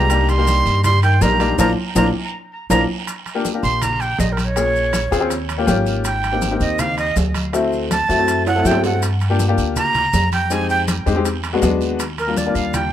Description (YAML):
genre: Afro-Cuban jazz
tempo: 161 BPM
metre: 4/4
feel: straight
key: unclear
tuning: A4 = 440 Hz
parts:
  - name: breathy bright jazz flute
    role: melody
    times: 0.0-12.9 s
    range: Bb4 to C6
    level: -20 LUFS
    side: right 3 dB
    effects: plate reverb, tape echo
  - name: breathy trombone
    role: second line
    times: 0.0-2.8 s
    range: Eb3 to G3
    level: -26 LUFS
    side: left 4 dB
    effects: none
  - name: warm upright piano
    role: accompaniment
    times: 0.0-12.9 s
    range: G3 to Bb4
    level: -21 LUFS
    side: left 4 dB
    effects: none
  - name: upright bass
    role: bass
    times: 0.0-12.9 s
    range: Ab1 to G2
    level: -21 LUFS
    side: equal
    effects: none
  - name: congas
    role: percussion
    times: 0.1-12.9 s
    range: none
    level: -25 LUFS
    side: left 1 dB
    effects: none
  - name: guiro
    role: percussion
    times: 0.1-12.9 s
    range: none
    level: -33 LUFS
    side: right 8 dB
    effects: none
  - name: maracas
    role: percussion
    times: 0.1-12.9 s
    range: none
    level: -31 LUFS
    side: left 8 dB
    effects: none
  - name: timbales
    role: percussion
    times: 0.1-12.9 s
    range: none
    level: -27 LUFS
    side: right 5 dB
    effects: none
room: moderate club reverb, RT60 0.6 s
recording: none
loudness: -16 LUFS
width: side -11 dB against mid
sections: 0.0-3.1 A section; 3.1-12.9 B section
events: band accent 1.6-3.1; drum fill 2.3-3.1, 8.5-9.0; flute solo 3.1-12.9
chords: 0.1 Cm9; 1.6 Bb; 3.1 Bb6; 4.6 Bbm7; 5.3 Eb7; 6.0 Abmaj7; 7.5 D7; 9.0 Gm7; 10.5 Fm7; 11.3 E9; 12.0 Ebmaj7